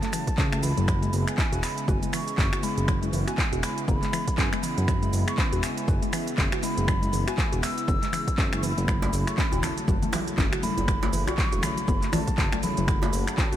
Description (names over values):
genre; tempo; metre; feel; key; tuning
afro house; 120 BPM; 4/4; swing 58% on 16ths; F# minor; A4 = 443 Hz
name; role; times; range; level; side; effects
breathy concert flute; melody; 0.0-13.6 s; G#5 to E6; -33 LUFS; equal; ping-pong delay
warm analog pad; sustained chords; 0.0-13.6 s; C#3 to F#4; -34 LUFS; equal; chorus, sidechain pumping
mallet-like synth pluck; arpeggios; 0.0-13.6 s; E3 to F#4; -33 LUFS; left 1 dB; chorus, sidechain pumping, ping-pong delay
afro-pop drum kit; drums; 0.0-13.6 s; finger snaps, handclaps, hi-hat, shaker; -31 LUFS; equal; studio reverb
electronic kick drum; drums; 0.3-13.5 s; none; -26 LUFS; equal; overdrive, studio reverb
smooth synth bass; bass; 0.4-13.6 s; E1 to C#2; -28 LUFS; equal; sidechain pumping
congas; percussion; 9.0-13.5 s; none; -33 LUFS; left 3 dB; none
djembe; percussion; 9.0-13.5 s; none; -34 LUFS; right 3 dB; none
room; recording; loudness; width
light reverb, digital ambience; none; -23 LUFS; side -11 dB against mid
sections
0.0-13.6 A section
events
none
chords
0.0 F#m7; 0.9 C#m7; 8.9 F#m7